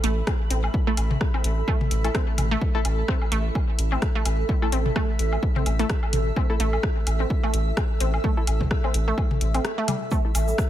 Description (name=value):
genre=minimal techno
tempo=128 BPM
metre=4/4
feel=swing 57% on 16ths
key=A minor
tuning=A4 = 440 Hz
part: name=resonant blip pluck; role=riff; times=0.0-10.2 s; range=G3 to C4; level=-31 LUFS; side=equal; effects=chorus, phaser, sidechain pumping, ping-pong delay
part: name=round analog bass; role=bass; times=0.0-10.5 s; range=A1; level=-24 LUFS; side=equal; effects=sidechain pumping
part: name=punchy analog drum machine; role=drums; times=0.0-10.7 s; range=hi-hat, rim click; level=-31 LUFS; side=left 1 dB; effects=none
part: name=granular cloud pad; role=texture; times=0.0-10.7 s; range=A4 to E6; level=-31 LUFS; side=right 2 dB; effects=built-in reverb, sidechain pumping
part: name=electronic kick drum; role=drums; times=0.3-10.7 s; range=none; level=-25 LUFS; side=equal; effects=overdrive
part: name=electronic woodblock and toms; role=percussion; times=0.3-10.5 s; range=none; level=-32 LUFS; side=left 2 dB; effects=tape echo
part: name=filtered dub chord stab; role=stabs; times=0.9-10.3 s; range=A3 to A4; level=-34 LUFS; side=left 4 dB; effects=chorus, tape echo
part: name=egg shaker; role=percussion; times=10.1-10.7 s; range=none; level=-35 LUFS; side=right 2 dB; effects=none
part: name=bubbling stepped-filter texture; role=texture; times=10.5-10.7 s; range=E5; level=-34 LUFS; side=left 7 dB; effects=chorus, built-in reverb, sidechain pumping
room=little or no reverb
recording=none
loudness=-21 LUFS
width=side -12 dB against mid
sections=0.0-10.7 A section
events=break 9.6-10.1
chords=0.0 A5